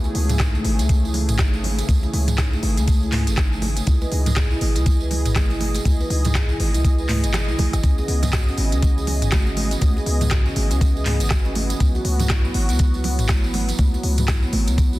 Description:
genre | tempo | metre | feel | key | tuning
afro house | 121 BPM | 4/4 | swing 59% on 16ths | C# minor | A4 = 440 Hz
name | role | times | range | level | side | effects
warm analog pad | sustained chords | 0.0-15.0 s | B2 to D#5 | -30 LUFS | equal | chorus, sidechain pumping
warm 808-style bass | bass | 0.0-15.0 s | G#1 to C#2 | -22 LUFS | equal | sidechain pumping
tambourine | percussion | 0.0-15.0 s | none | -35 LUFS | right 5 dB | none
marimba with soft mallets | arpeggios | 0.1-15.0 s | G#3 to B4 | -28 LUFS | right 1 dB | sidechain pumping, digital delay
afro-pop drum kit | drums | 0.1-14.9 s | handclaps, hi-hat, rim click, toms | -26 LUFS | left 1 dB | none
congas | percussion | 0.1-14.9 s | none | -31 LUFS | right 4 dB | none
electronic kick drum | drums | 0.4-14.9 s | none | -19 LUFS | equal | none
room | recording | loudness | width
small room ambience | dense, heavily limited modern master | -17 LUFS | side -18 dB against mid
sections
0.0-15.0 A section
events
kick drops out 7.3-7.8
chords
0.0 Amaj7; 3.9 Emaj7; 7.8 C#m9; 11.8 Bsus4

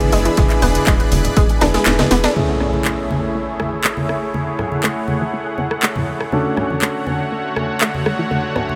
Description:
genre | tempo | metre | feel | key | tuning
progressive house | 121 BPM | 4/4 | straight | A major | A4 = 442 Hz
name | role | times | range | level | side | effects
supersaw pad | sustained chords | 0.0-8.8 s | D3 to F#6 | -26 LUFS | equal | sidechain pumping, low-pass filter
dark grand piano | stabs | 0.0-8.8 s | A3 to A4 | -26 LUFS | equal | sidechain pumping, low-pass filter, tape echo
tight sequencer bass | bass | 0.0-2.3 s | E1 to F#1 | -22 LUFS | equal | sidechain pumping
house drum kit | drums | 0.0-8.7 s | handclaps, hi-hat, rim click, snare drum | -25 LUFS | equal | studio reverb
raw garage drum kit | drums | 0.0-2.4 s | hi-hat, snare drum | -34 LUFS | equal | none
congas and woodblock | percussion | 0.0-8.8 s | none | -27 LUFS | equal | sidechain pumping on perc
analog pluck | arpeggios | 0.1-8.6 s | G#2 to D4 | -25 LUFS | equal | chorus, sidechain pumping, tape echo
electronic kick drum | drums | 0.4-1.5 s | none | -19 LUFS | equal | studio reverb
impact | sound effects | 2.4-4.3 s | none | -29 LUFS | equal | none
room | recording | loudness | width
light reverb, small room ambience | none | -18 LUFS | mono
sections
0.0-2.4 A section; 2.4-8.8 B section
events
drum fill 1.6-2.4; kick drops out 1.9-2.4; band accent 2.2; impact 2.4-4.3; filter sweep on supersaw synth 2.4-8.8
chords
0.0 E7; 2.4 Amaj7; 6.3 Dmaj7

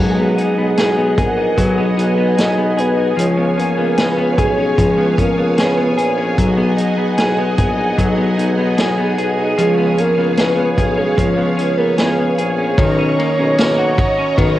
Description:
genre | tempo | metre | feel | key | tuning
dream pop | 75 BPM | 4/4 | straight | B lydian | A4 = 440 Hz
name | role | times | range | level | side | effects
soft octave-layered synth lead | melody | 0.0-14.6 s | G#4 to D#5 | -19 LUFS | right 1 dB | chorus, phaser, cassette tape, tape echo
string machine, violas | sustained chords | 0.0-14.6 s | G#4 to C#6 | -22 LUFS | right 1 dB | ensemble chorus, cassette tape
clean electric guitar | arpeggios | 0.0-14.6 s | D#3 to G#4 | -17 LUFS | left 2 dB | wide subtle chorus, cassette tape, tape echo
clear tuba | bass | 0.0-14.6 s | A#1 to C#2 | -22 LUFS | equal | none
vintage drum kit | drums | 0.4-14.6 s | hi-hat, kick drum, ride cymbal, snare drum, tambourine | -18 LUFS | equal | cassette tape
room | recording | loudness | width
moderate spring reverb, RT60 2.8 s | home recording on cassette | -13 LUFS | side -14 dB against mid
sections
0.0-12.8 A section; 12.8-14.6 B section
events
none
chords
0.0 B6; 3.2 C#7; 6.4 B6; 9.6 C#7; 12.8 Bmaj9

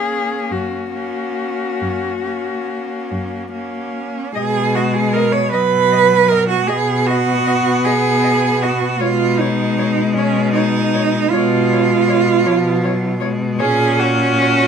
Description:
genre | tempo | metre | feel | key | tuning
classical, lyrical piece for cello ensemble | 46-53 BPM (dotted quarters) | 12/8 | rubato | B major | A4 = 443 Hz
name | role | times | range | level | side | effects
rich cello | melody | 0.0-14.5 s | F#4 to D#5 | -24 LUFS | left 7 dB | none
clear cello | second line | 0.0-14.7 s | C#4 to C#5 | -17 LUFS | right 6 dB | none
clear cello | accompaniment | 0.0-14.7 s | E#3 to C#4 | -20 LUFS | left 4 dB | none
rich cello | bass | 0.0-14.7 s | F#2 to B2 | -21 LUFS | equal | none
room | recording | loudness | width
moderate studio ambience, RT60 0.5 s | none | -14 LUFS | side -7 dB against mid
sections
0.0-4.4 A section; 4.4-14.7 B section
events
none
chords
0.0 F#; 4.4 B5; 9.0 C#7/B; 13.6 F#/A#

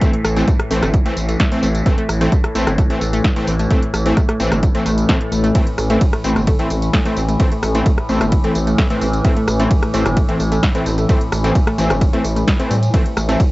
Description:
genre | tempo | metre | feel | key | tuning
driving peak-time techno | 130 BPM | 4/4 | straight | A minor | A4 = 440 Hz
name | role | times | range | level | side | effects
supersaw stab | stabs | 0.0-13.4 s | E3 to C4 | -21 LUFS | equal | sidechain pumping, cassette tape, tape echo
overtone-sweeping drone | drone | 0.0-13.5 s | A2 to E3 | -24 LUFS | left 1 dB | chorus, built-in reverb, sidechain pumping, cassette tape
electronic kick drum | drums | 0.0-13.5 s | none | -15 LUFS | equal | cassette tape
techno drum kit | drums | 0.0-13.5 s | hi-hat, ride cymbal, rim click, snare drum, tambourine | -24 LUFS | equal | cassette tape
analog pluck | riff | 0.1-13.4 s | G3 to F4 | -24 LUFS | equal | chorus, vintage 12-bit sampler grit, sidechain pumping, cassette tape, tape echo
gritty driven synth bass | bass | 0.2-13.4 s | G1 to A2 | -20 LUFS | equal | sidechain pumping
swell | sound effects | 5.0-5.6 s | none | -26 LUFS | left 3 dB | none
room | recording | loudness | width
moderate booth ambience, RT60 0.2 s | home recording on cassette, nothing above 7.8 kHz | -14 LUFS | side -20 dB against mid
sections
0.0-13.5 A section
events
none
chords
0.0 Am

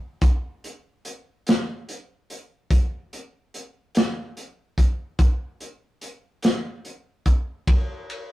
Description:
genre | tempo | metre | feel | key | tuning
blues | 48 BPM (dotted quarters) | 12/8 | straight | none | none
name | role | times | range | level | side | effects
crunchy breakbeat drum kit | drums | 0.2-8.3 s | hi-hat, kick drum, ride cymbal, snare drum | -21 LUFS | equal | none
room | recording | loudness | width
light reverb | rough rehearsal-room recording, warm saturation | -21 LUFS | side -16 dB against mid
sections
0.0-7.7 A section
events
none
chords
none

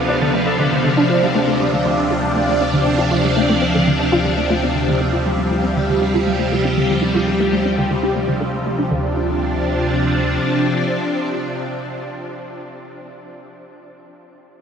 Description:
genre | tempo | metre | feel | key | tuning
ambient, sequencer-driven space music | 119 BPM | 4/4 | straight | D dorian | A4 = 440 Hz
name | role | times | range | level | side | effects
phased string machine | sustained chords | 0.0-13.1 s | C3 to D4 | -17 LUFS | equal | ensemble chorus, phaser, shimmer reverb
resonant blip pluck | riff | 0.0-9.1 s | D3 to F4 | -22 LUFS | equal | phaser, ensemble chorus, analog delay
warm sub bass | bass | 0.0-10.4 s | D2 | -27 LUFS | equal | none
clean electric guitar | arpeggios | 0.1-0.7 s | D4 to A4 | -27 LUFS | left 2 dB | auto-pan, analog delay, shimmer reverb
room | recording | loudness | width
wet huge ambient reverb, RT60 8.8 s | dreamy mix soaked in reverb | -15 LUFS | side -7 dB against mid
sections
0.0-8.9 A section; 8.9-12.9 B section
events
filter sweep on synth arpeggio sound 0.0-8.9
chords
0.0 Dm7

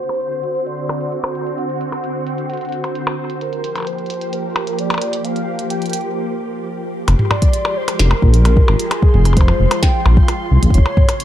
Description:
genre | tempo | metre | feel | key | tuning
IDM | 131 BPM | 4/4 | straight | F dorian | A4 = 438 Hz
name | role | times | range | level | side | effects
warm velvety synth lead | melody | 0.0-11.2 s | Ab4 to G5 | -24 LUFS | equal | chorus, dub echo
soft string machine | sustained chords | 0.0-11.2 s | Db3 to G4 | -24 LUFS | right 1 dB | phaser, ensemble chorus
glitchy drum kit | drums | 0.0-11.2 s | hi-hat, percussion blips, snare drum, toms | -21 LUFS | equal | small room ambience
bubbling stepped-filter texture | texture | 0.0-11.2 s | C5 to C6 | -30 LUFS | right 1 dB | chorus, built-in reverb, sidechain pumping
dark detuned saw bass | bass | 7.1-10.8 s | F1 to C2 | -12 LUFS | equal | none
electronic kick drum | drums | 7.4-11.1 s | none | -13 LUFS | equal | small room ambience
room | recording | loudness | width
little or no reverb | echo-heavy mix, low-pass filter | -14 LUFS | side -12 dB against mid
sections
0.0-7.1 A section; 7.1-11.2 B section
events
filter sweep 0.0-7.1; break 6.2-7.1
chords
0.0 D7; 3.4 Gm7; 7.1 Fmadd9; 10.7 Gb

